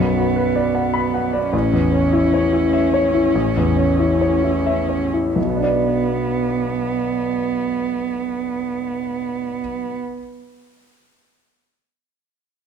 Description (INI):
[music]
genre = neoclassical piano and strings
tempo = 84-104 BPM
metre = 3/4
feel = rubato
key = B minor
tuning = A4 = 440 Hz
[part]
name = dark cello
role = second line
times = 0.0-9.9 s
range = B3 to C#4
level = -22 LUFS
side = right 5 dB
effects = none
[part]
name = warm concert grand piano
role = accompaniment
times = 0.0-10.2 s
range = A1 to B5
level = -18 LUFS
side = left 2 dB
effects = none
[sound]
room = moderate recital hall reverb, RT60 1.4 s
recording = none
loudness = -17 LUFS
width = side -7 dB against mid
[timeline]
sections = 0.0-5.4 A section; 5.4-9.6 B section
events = slowing down 0.7-5.4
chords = 0.0 Bm; 1.5 A; 5.4 Bm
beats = 0.36 0.94 | 1.53 2.12 2.73 | 3.34 3.98 4.66 | 5.37 6.07 6.77 | 7.47 8.18 8.88